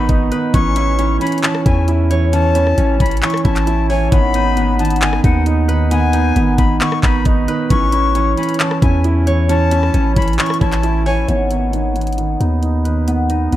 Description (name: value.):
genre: hip hop, trap.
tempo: 134 BPM.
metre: 4/4.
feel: half-time.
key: G# phrygian.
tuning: A4 = 439 Hz.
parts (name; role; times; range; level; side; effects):
breathy silver concert flute; second line; 0.0-11.3 s; F#5 to C#6; -22 LUFS; left 6 dB; dub echo.
dark grand piano; accompaniment; 0.0-13.6 s; D#3 to E4; -20 LUFS; right 5 dB; low-pass filter, dub echo.
Celtic harp; arpeggios; 0.0-13.6 s; B3 to C#5; -20 LUFS; left 2 dB; low-pass filter, dub echo.
long sustained 808-style bass; bass; 0.0-13.6 s; G#1 to E2; -17 LUFS; equal; none.
trap drum kit; drums; 0.1-13.6 s; handclaps, hi-hat, kick drum, rim click; -17 LUFS; equal; none.
room: light reverb, studio reverb.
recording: echo-heavy mix.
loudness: -13 LUFS.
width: side -13 dB against mid.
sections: 0.0-11.3 A section; 11.3-13.6 B section.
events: filter sweep 11.3-13.6.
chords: 0.0 G#m; 0.5 A; 4.1 G#m; 7.7 A; 11.3 G#m.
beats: 0.09 | 0.54 0.99 1.44 1.88 | 2.33 2.78 3.23 3.67 | 4.12 4.57 5.02 5.46 | 5.91 6.36 6.81 7.26 | 7.70 8.15 8.60 9.05 | 9.49 9.94 10.39 10.84 | 11.29 11.73 12.18 12.63 | 13.08 13.52.